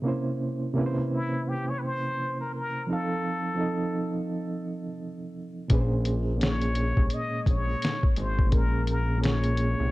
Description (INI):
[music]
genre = lo-fi hip hop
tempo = 85 BPM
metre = 4/4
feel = swing 60% on 16ths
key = Bb minor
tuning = A4 = 440 Hz
[part]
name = barky reed electric piano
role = accompaniment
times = 0.0-9.9 s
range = Bb2 to F5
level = -29 LUFS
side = right 1 dB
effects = overdrive, fast tremolo, cassette tape
[part]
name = trumpet with plunger mute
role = melody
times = 1.1-9.9 s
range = E4 to Eb5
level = -32 LUFS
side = left 2 dB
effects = none
[part]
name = deep dark ambient pad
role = sustained chords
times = 7.3-9.9 s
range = Bb2 to Bb3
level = -40 LUFS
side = left 4 dB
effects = none
[part]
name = fat analog bass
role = bass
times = 5.7-9.9 s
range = Ab1 to C2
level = -28 LUFS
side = left 1 dB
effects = none
[part]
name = lo-fi sampler-style drum kit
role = drums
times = 5.7-9.8 s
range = hi-hat, kick drum, snare drum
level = -25 LUFS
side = equal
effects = none
[sound]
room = digital ambience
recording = dark, warm production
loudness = -25 LUFS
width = side -18 dB against mid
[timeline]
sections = 0.0-9.9 A section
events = none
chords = 0.1 C7b9; 2.9 F7; 5.7 Bbm9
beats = | 0.05 0.76 1.47 2.17 | 2.88 3.58 4.29 5.00 | 5.70 6.41 7.11 7.82 | 8.53 9.23